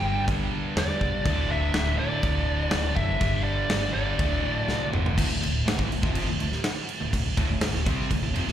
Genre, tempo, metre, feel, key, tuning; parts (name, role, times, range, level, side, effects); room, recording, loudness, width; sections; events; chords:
hard rock; 123 BPM; 4/4; straight; A4 = 440 Hz
nasal lead guitar with a parked wah; melody; 0.0-4.9 s; D5 to G5; -30 LUFS; equal; overdrive, plate reverb, slapback echo, digital delay
high-gain distorted guitar; riff; 0.0-8.5 s; D2 to C4; -34 LUFS; left 1 dB; distortion, slapback echo
overdriven electric guitar; riff; 0.0-8.5 s; D2 to C4; -33 LUFS; right 10 dB; slapback echo
overdriven semi-hollow guitar; riff; 0.0-8.5 s; D2 to C4; -34 LUFS; left 8 dB; slapback echo
upright bass; bass; 0.0-8.5 s; D1 to E2; -29 LUFS; equal
big rock drum kit; drums; 0.3-8.5 s; crash cymbal, kick drum, snare drum, toms; -27 LUFS; equal
light reverb; live gig heard through the venue's PA, club reverb; -23 LUFS; side -10 dB against mid
0.0-5.2 A section; 5.2-8.5 B section
drum fill 4.7-5.2
0.0 G5; 1.3 D5; 3.2 G5; 4.2 D5